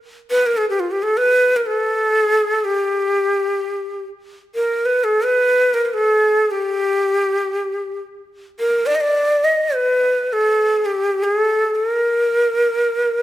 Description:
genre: Arabic maqam ensemble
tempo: free time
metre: none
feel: none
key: G maqam saba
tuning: A4 = 442 Hz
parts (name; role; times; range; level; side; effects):
- breathy bright ney; solo; 0.3-13.2 s; F4 to Eb5; -16 LUFS; equal; none
room: moderate recital hall reverb, RT60 1.9 s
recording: none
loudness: -16 LUFS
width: side -14 dB against mid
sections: 0.0-4.3 A section; 4.3-13.2 A section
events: none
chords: none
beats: free time

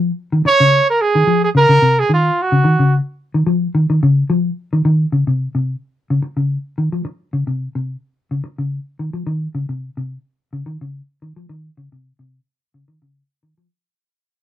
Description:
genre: afrobeat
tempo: 109 BPM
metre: 4/4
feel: swing 53% on 16ths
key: unclear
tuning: A4 = 440 Hz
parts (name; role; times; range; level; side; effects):
- mellow electric guitar; arpeggios; 0.0-13.7 s; C3 to F3; -16 LUFS; left 1 dB; none
- clear trumpet; melody; 0.5-2.9 s; F4 to Db5; -13 LUFS; right 3 dB; none
room: light reverb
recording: dry, close 1970s-style studio recording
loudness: -14 LUFS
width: side -12 dB against mid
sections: 0.0-4.8 A section; 4.8-13.7 B section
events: fade-out 4.8-13.7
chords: 0.5 Bbm11; 2.7 Dbadd9; 4.8 Cm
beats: | 0.47 1.01 1.56 2.11 | 2.65 3.20 3.75 4.30 | 4.85 5.40 5.95 6.50 | 7.05 7.61 8.16 8.71 | 9.27 9.82 10.37 10.93 | 11.48 12.04 12.59 13.14

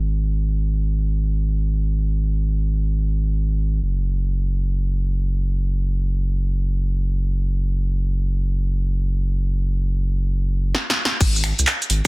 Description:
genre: UK garage, two-step garage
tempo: free time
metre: none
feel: none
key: unclear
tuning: A4 = 441 Hz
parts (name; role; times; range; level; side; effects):
- saturated sub bass; bass; 0.0-12.0 s; Gb1 to C2; -20 LUFS; equal; tube saturation
- punchy analog drum machine; drums; 10.7-12.1 s; crash cymbal, finger snaps, handclaps, hi-hat, shaker, snare drum; -19 LUFS; equal; low-pass filter on snare, low-pass filter on hats, low-pass filter on cymbals, low-pass filter on perc, low-pass filter on room
- electronic kick drum; drums; 11.2-12.1 s; none; -17 LUFS; equal; overdrive
room: little or no reverb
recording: dense, heavily limited modern master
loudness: -19 LUFS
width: side -25 dB against mid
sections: 0.0-11.2 A section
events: drum fill 10.7-11.2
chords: none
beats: free time

